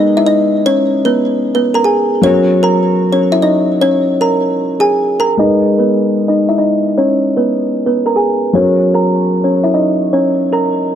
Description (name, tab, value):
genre	hip hop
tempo	152 BPM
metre	4/4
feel	half-time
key	G# minor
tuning	A4 = 436 Hz
part	kalimba	melody	0.0-11.0 s	B3 to A#5	-12 LUFS	equal	none
part	felt-muted upright piano	accompaniment	0.0-11.0 s	F#3 to C#5	-17 LUFS	left 1 dB	none
room	light reverb, studio reverb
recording	dark, warm production, low-pass filter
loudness	-11 LUFS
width	side -9 dB against mid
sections	0.0-5.4 A section; 5.4-11.0 B section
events	filter sweep 5.4-11.0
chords	0.0 G#m; 2.2 F#; 5.4 G#m; 8.6 F#